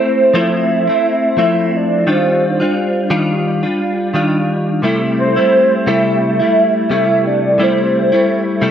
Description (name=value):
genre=indie pop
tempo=87 BPM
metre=4/4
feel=swing 55% on 16ths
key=C major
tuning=A4 = 443 Hz
part: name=soft octave-layered synth lead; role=melody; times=0.0-8.7 s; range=C5 to E5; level=-14 LUFS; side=right 1 dB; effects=phaser, ensemble chorus, analog delay
part: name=direct-recorded clean electric guitar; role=accompaniment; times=0.0-8.7 s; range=C3 to F4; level=-14 LUFS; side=equal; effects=ensemble chorus, warbly pitch drift
room=moderate studio reverb, RT60 0.7 s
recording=cassette tape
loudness=-12 LUFS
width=side -9 dB against mid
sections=0.0-8.7 A section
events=none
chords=0.0 Fmaj7; 2.1 Ebmaj9; 4.8 C6